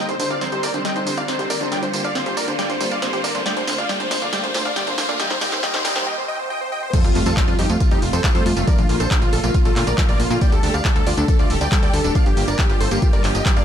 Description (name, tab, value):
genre	uplifting trance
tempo	138 BPM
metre	4/4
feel	straight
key	G minor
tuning	A4 = 441 Hz
part	dense compressed supersaw	melody	0.0-13.6 s	Eb4 to G5	-24 LUFS	equal	sidechain pumping, tape echo
part	rich chamber string section	sustained chords	0.0-13.6 s	C3 to G4	-28 LUFS	right 2 dB	sidechain pumping
part	wide unison pluck	arpeggios	0.0-13.6 s	F3 to A4	-27 LUFS	left 1 dB	sidechain pumping, dub echo
part	riser, noise sweep and impact	sound effects	0.1-8.7 s	none	-28 LUFS	equal	none
part	tight sequencer bass	bass	0.1-13.6 s	D1 to Bb2	-25 LUFS	equal	sidechain pumping, high-pass filter
part	punchy analog drum machine	drums	0.1-13.6 s	crash cymbal, handclaps, hi-hat, snare drum, tambourine	-26 LUFS	right 1 dB	sidechain pumping on hats, high-pass filter on hats, high-pass filter on snare, sidechain pumping on perc, high-pass filter on perc, sidechain pumping on cymbals, high-pass filter on cymbals, high-pass filter on room
part	electronic kick drum	drums	6.9-13.5 s	none	-18 LUFS	equal	none
room	light reverb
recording	high-pass filter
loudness	-17 LUFS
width	side -9 dB against mid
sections	0.0-6.9 A section; 6.9-13.6 B section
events	build-up 0.0-6.9; drum fill 0.0-6.1; filter sweep on synth pluck 0.0-6.9; riser 0.1-6.1; noise sweep 5.2-6.9; break 6.1-6.9; drop 6.9-13.6; impact 6.9-8.7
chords	0.0 Cmadd9; 1.7 Gm7; 3.5 Bbmaj7; 5.2 Eb; 6.9 Fadd9; 8.7 Bbmaj7; 10.4 Dsus4; 12.2 Gm7